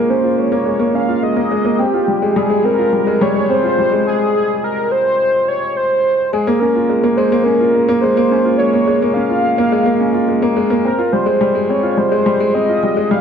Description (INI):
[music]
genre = electronica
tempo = 106 BPM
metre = 4/4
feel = straight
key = Bb dorian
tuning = A4 = 442 Hz
[part]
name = warm velvety synth lead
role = melody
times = 0.0-13.2 s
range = G4 to F5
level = -16 LUFS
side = equal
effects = chorus
[part]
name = dark upright piano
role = riff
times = 0.0-13.2 s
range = G3 to F4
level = -15 LUFS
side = left 1 dB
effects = digital delay
[sound]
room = wet concert hall reverb, RT60 1.9 s, small room ambience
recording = none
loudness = -13 LUFS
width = side -7 dB against mid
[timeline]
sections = 0.0-6.3 A section; 6.3-13.2 B section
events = build-up 0.0-6.3; drop 6.3-13.2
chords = 0.0 Bbm7; 1.8 Fmadd9; 6.3 Bbm7; 10.9 Fmadd9